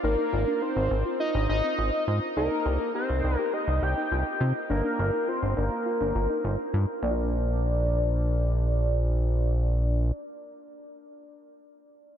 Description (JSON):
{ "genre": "pop", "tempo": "103 BPM", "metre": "4/4", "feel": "straight", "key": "Bb mixolydian", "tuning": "A4 = 440 Hz", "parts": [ { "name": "fat analog lead", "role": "melody", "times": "0.0-10.1 s", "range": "Bb4 to G5", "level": "-29 LUFS", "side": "equal", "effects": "chorus, phaser, low-pass filter, diffuse ambient delay" }, { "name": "soft round pluck", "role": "arpeggios", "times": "0.0-10.3 s", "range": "Bb3 to Bb4", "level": "-34 LUFS", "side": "left 2 dB", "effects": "chorus, low-pass filter, diffuse ambient delay" }, { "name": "chorused synth bass", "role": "bass", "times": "0.0-10.1 s", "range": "G1 to C3", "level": "-25 LUFS", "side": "equal", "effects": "none" } ], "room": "moderate huge ambient reverb, RT60 8.2 s", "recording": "dreamy mix soaked in reverb", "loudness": "-24 LUFS", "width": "side -9 dB against mid", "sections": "0.0-7.0 A section; 7.0-9.4 B section", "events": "filter sweep 0.0-7.0", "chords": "0.0 Fm7/Ab; 2.4 Cm; 4.7 Gm; 7.0 Bb" }